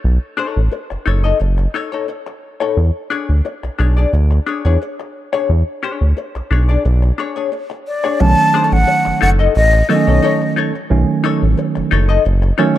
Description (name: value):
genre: funk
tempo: 88 BPM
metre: 4/4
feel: straight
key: B mixolydian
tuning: A4 = 440 Hz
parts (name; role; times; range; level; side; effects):
- round analog bass; bass; 0.0-12.5 s; F#1 to E2; -13 LUFS; equal; none
- vintage hollow-body jazz guitar; accompaniment; 0.4-12.8 s; D4 to D#5; -20 LUFS; left 7 dB; wah
- breathy jazz flute; melody; 7.9-10.5 s; D5 to A5; -16 LUFS; left 1 dB; none
- tine electric piano; stabs; 8.2-12.8 s; C#3 to C#4; -17 LUFS; right 5 dB; lush chorus, slapback echo
room: light reverb, digital ambience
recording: dark, warm production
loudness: -13 LUFS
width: side -13 dB against mid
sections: 0.0-8.2 A section; 8.2-12.8 B section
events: none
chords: 0.0 B9 (rootless); 2.8 E6; 8.2 B9